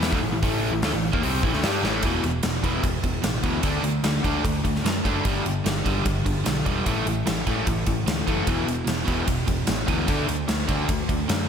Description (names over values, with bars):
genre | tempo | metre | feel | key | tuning
hard rock | 149 BPM | 4/4 | straight | unclear | A4 = 440 Hz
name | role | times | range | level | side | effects
cranked stack guitar | riff | 0.0-11.5 s | E2 to G4 | -28 LUFS | right 9 dB | overdrive
overdriven semi-hollow guitar | riff | 0.0-11.5 s | E2 to G4 | -28 LUFS | left 8 dB | none
picked electric bass | bass | 0.0-11.4 s | E1 to G2 | -29 LUFS | equal | none
gated 80s drum kit | drums | 0.0-11.4 s | hi-hat, kick drum, ride cymbal, snare drum | -26 LUFS | equal | none
room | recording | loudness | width
moderate lush hall reverb, RT60 1.8 s, studio ambience | big arena sound | -21 LUFS | side -7 dB against mid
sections
0.0-2.0 A section; 2.0-11.5 B section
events
drum fill 1.8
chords
0.0 A5; 2.0 E5; 3.6 D; 5.2 G5; 6.9 A5; 8.5 E5; 10.1 D5